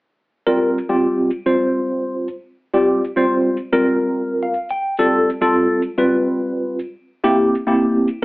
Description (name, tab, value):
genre	jazz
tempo	106 BPM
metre	4/4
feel	straight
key	unclear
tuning	A4 = 440 Hz
part	tine electric piano	accompaniment	0.5-8.2 s	G3 to G5	-15 LUFS	equal	medium stereo tremolo, phaser
room	wet studio reverb, RT60 0.6 s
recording	AM radio sound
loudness	-16 LUFS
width	side -21 dB against mid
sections	0.5-8.2 A section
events	tine electric piano fill 4.1-5.0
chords	0.5 Fsus24; 5.0 G9sus4; 7.2 C7